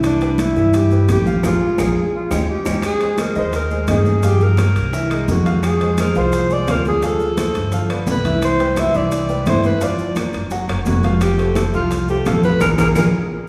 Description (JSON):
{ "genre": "Afro-Cuban jazz", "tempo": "172 BPM", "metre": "4/4", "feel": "straight", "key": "unclear", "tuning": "A4 = 439 Hz", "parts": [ { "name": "clear concert grand piano", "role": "accompaniment", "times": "0.0-13.1 s", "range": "Eb3 to F#5", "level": "-25 LUFS", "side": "equal", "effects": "none" }, { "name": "upright bass", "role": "bass", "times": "0.0-13.1 s", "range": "F1 to G2", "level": "-22 LUFS", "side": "equal", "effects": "none" }, { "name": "bongos", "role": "percussion", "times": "0.0-13.0 s", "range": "none", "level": "-32 LUFS", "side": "equal", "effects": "none" }, { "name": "claves", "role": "percussion", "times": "0.0-13.0 s", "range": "none", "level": "-38 LUFS", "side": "equal", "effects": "none" }, { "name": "congas", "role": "percussion", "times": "0.0-13.0 s", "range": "none", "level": "-26 LUFS", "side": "equal", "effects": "none" }, { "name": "maracas", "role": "percussion", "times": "0.0-13.0 s", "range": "none", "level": "-40 LUFS", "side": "equal", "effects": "none" }, { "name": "timbales", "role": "percussion", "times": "0.0-13.0 s", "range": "none", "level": "-32 LUFS", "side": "equal", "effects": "none" }, { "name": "breathy alto saxophone", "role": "melody", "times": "0.1-13.1 s", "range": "D4 to E5", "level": "-23 LUFS", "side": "equal", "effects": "none" } ], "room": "wet recital hall reverb, RT60 1.8 s", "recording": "recorded in a church or concert hall, studio ambience", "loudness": "-17 LUFS", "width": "mono", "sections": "0.0-2.8 A section; 2.8-13.5 B section", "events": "band accent 1.4-2.8, 12.6-13.5; drum fill 2.1-2.8, 13.1-13.5", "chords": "0.0 Cmaj7; 1.4 Bb5; 2.1 Eb9; 2.8 Abadd9; 4.2 Gm7b5; 4.9 Caug7; 5.6 Fm; 7.0 Dm7; 7.7 G6; 8.4 Cmaj7; 9.8 Gm7; 10.5 F#; 11.2 Fadd9; 12.6 Bb5" }